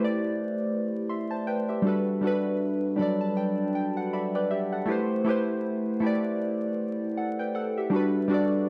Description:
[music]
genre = hip hop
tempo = 79 BPM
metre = 4/4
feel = swing 57% on 16ths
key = A dorian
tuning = A4 = 440 Hz
[part]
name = warm analog keys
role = solo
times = 0.0-8.7 s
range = F#3 to C6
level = -27 LUFS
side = equal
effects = chorus, phaser
[sound]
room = moderate spring reverb, RT60 1.3 s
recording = vinyl crackle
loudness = -28 LUFS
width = mono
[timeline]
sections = 0.0-8.7 A section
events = none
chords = 0.0 Am9; 1.8 Gmaj7; 4.9 Am9; 7.9 Gmaj7

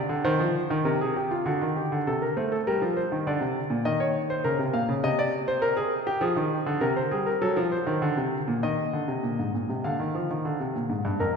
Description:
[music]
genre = classical, baroque-style two-part invention for grand piano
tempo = 100 BPM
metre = 4/4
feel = straight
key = unclear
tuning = A4 = 440 Hz
[part]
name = clear concert grand piano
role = solo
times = 0.0-11.4 s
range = F2 to F5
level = -24 LUFS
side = equal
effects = none
[sound]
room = wet concert hall reverb, RT60 2.6 s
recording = recorded in a church or concert hall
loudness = -24 LUFS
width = side -5 dB against mid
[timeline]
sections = 0.0-1.5 A section; 1.5-11.1 B section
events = none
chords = 0.3 Cm/Eb; 1.5 D7; 2.7 Gm (rootless); 3.9 Eb5; 5.0 Ab/C; 6.2 Fm (rootless); 7.4 Adim; 8.6 Bbsus4; 9.8 Bb/D (rootless)

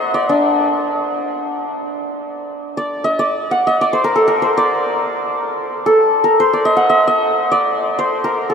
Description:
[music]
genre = Persian modal ensemble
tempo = free time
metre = none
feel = none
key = D dastgah homayun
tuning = A4 = 439 Hz
[part]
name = santur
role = solo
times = 0.0-8.5 s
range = D4 to F#5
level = -14 LUFS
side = equal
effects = none
[sound]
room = wet huge ambient reverb, RT60 7.3 s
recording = in a vast, echoing space, lossy compression artefacts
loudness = -14 LUFS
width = side -6 dB against mid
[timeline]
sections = 0.0-2.5 A section; 2.5-8.5 A section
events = none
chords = none

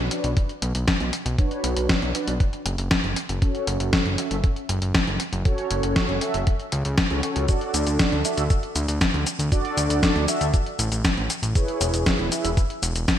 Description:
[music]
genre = italo disco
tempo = 118 BPM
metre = 4/4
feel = straight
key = F# minor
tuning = A4 = 441 Hz
[part]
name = mellow synth brass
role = stabs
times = 0.0-12.5 s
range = C#4 to E5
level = -27 LUFS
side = right 1 dB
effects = chorus, digital delay
[part]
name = fat analog bass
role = bass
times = 0.0-13.1 s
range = E1 to D2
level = -26 LUFS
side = equal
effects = none
[part]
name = clean 12-bit digital drum machine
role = drums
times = 0.1-13.2 s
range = cabasa, hi-hat, snare drum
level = -25 LUFS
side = left 1 dB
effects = gated reverb
[part]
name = electronic kick drum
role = drums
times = 0.4-13.2 s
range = none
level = -22 LUFS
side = equal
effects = none
[sound]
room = moderate lush hall reverb, RT60 1.7 s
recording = bright 1980s-style digital production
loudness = -20 LUFS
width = side -10 dB against mid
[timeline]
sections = 0.0-13.2 A section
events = none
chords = 0.0 Bmadd9; 3.4 F#m; 7.5 D; 11.6 E6

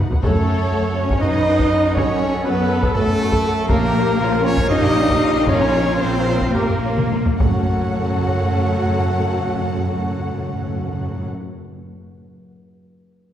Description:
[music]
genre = cinematic, epic orchestral film score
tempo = 207-244 BPM (eighths)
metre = 7/8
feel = straight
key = F# dorian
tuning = A4 = 438 Hz
[part]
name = dark symphonic viola section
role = accompaniment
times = 0.0-11.3 s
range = F#3 to C#5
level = -28 LUFS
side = right 1 dB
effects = none
[part]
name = warm symphonic string section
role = sustained chords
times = 0.0-11.2 s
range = A#3 to F#5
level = -31 LUFS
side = left 1 dB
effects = none
[part]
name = rich studio double bass section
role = bass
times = 0.0-11.2 s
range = A#1 to F#2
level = -24 LUFS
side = right 2 dB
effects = none
[part]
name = warm symphonic cello section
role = bass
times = 0.0-11.3 s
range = A2 to D#4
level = -25 LUFS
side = right 1 dB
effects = none
[part]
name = taiko ensemble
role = drums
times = 0.1-8.5 s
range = none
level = -22 LUFS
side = equal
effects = none
[part]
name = rich studio violin section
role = melody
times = 0.2-11.2 s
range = A4 to F#5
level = -31 LUFS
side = left 4 dB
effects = none
[part]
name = mellow hollow large flute ensemble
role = second line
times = 0.2-11.3 s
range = A4 to F#5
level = -28 LUFS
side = left 1 dB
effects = none
[part]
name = warm symphonic violin section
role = second line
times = 0.2-11.3 s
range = E#4 to C#5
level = -36 LUFS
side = left 3 dB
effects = none
[part]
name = mellow French horn section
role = sustained chords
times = 0.2-11.2 s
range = F#3 to D#4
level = -24 LUFS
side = left 2 dB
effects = none
[part]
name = mellow trombone section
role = sustained chords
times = 0.2-11.3 s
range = C#3 to C#4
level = -32 LUFS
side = equal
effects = none
[part]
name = warm trumpet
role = stabs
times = 0.2-11.2 s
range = F#4 to D#5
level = -26 LUFS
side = equal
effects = none
[part]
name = timpani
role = percussion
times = 0.2-0.9, 7.4-11.2 s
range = F#2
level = -26 LUFS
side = equal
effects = none
[sound]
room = wet concert hall reverb, RT60 2.1 s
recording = heard from further back in the room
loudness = -16 LUFS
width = side -10 dB against mid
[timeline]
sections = 0.2-7.4 A section; 7.4-11.4 B section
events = drum fill 0.0, 7.0-7.4; slowing down 2.8-7.4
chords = 0.2 F#m; 3.7 A#m; 7.4 F#m

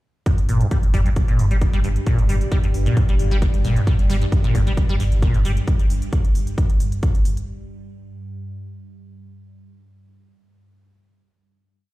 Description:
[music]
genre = driving peak-time techno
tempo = 133 BPM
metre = 4/4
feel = straight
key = G minor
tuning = A4 = 439 Hz
[part]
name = acid bass, saw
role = riff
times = 0.3-5.5 s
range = G2 to G3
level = -23 LUFS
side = equal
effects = ensemble chorus, sidechain pumping, ping-pong delay
[part]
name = deep dark ambient pad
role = drone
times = 0.7-7.5 s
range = G2 to G3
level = -28 LUFS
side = right 1 dB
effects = chorus, built-in reverb, sidechain pumping
[part]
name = electronic hi-hat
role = drums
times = 0.3-7.5 s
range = none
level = -42 LUFS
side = right 1 dB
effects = none
[part]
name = electronic kick drum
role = drums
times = 0.3-7.1 s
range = none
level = -19 LUFS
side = equal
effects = none
[part]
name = saturated sub bass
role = bass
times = 0.4-5.6 s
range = G1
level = -21 LUFS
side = equal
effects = sidechain pumping, low-pass filter
[sound]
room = little or no reverb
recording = played on a big sound system in a bare room, large studio reverb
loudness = -17 LUFS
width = side -18 dB against mid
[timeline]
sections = 0.3-7.5 groove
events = none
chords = 0.3 Gm

